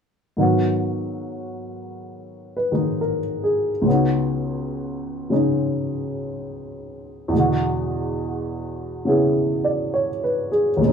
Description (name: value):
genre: jazz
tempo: 69 BPM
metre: 4/4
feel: swing 69% on 8ths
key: G# minor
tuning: A4 = 440 Hz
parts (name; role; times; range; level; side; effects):
- dark baby grand piano; accompaniment; 0.4-10.9 s; C#2 to D5; -20 LUFS; equal; none
room: moderate studio ambience, RT60 0.5 s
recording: band playing live in one room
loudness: -20 LUFS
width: side -6 dB against mid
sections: 0.4-10.9 A section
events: none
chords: 0.4 G#m7; 3.9 C#7sus4; 7.3 E9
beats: | 0.39 1.26 2.13 3.00 | 3.86 4.73 5.59 6.45 | 7.32 8.18 9.05 9.92 | 10.79